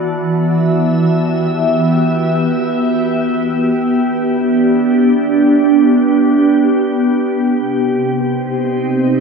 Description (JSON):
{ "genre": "ambient", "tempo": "free time", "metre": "none", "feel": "none", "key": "unclear", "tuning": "A4 = 436 Hz", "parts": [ { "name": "glassy FM pad", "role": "solo", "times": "0.0-9.2 s", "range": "C3 to A5", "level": "-12 LUFS", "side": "right 1 dB", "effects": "ensemble chorus, built-in reverb, analog delay" } ], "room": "wet echo chamber reverb, RT60 2.3 s", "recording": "echo-heavy mix", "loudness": "-12 LUFS", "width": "side -5 dB against mid", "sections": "0.0-9.2 A section", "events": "none", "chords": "0.0 Emadd9; 3.2 G; 7.6 Cm", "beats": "free time" }